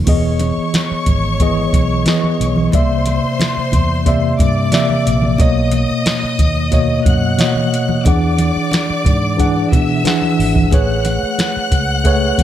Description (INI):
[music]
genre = lush 1970s-style soul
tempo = 90 BPM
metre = 4/4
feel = straight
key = unclear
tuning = A4 = 440 Hz
[part]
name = mellow tine electric piano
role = accompaniment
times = 0.0-12.4 s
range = B2 to F#5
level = -17 LUFS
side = left 1 dB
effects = medium stereo tremolo
[part]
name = vintage muted fingered electric bass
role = bass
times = 0.0-12.4 s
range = E1 to B2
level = -18 LUFS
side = equal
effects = none
[part]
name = clear studio string section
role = second line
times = 0.1-12.4 s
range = C5 to F#6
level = -22 LUFS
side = left 2 dB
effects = none
[part]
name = soft vintage rhythm box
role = drums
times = 0.1-12.4 s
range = crash cymbal, hi-hat, kick drum, snare drum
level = -16 LUFS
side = equal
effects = none
[part]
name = congas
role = percussion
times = 0.1-12.4 s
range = none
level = -24 LUFS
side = right 4 dB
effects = none
[sound]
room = little or no reverb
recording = none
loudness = -13 LUFS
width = side -11 dB against mid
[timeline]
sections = 0.1-12.4 A section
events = none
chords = 0.1 Emaj7; 2.7 C9; 5.4 Bmaj9; 8.1 E9; 10.7 Amaj9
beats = | 0.07 0.74 1.40 2.07 | 2.73 3.40 4.06 4.73 | 5.40 6.06 6.73 7.39 | 8.06 8.72 9.39 10.06 | 10.72 11.39 12.05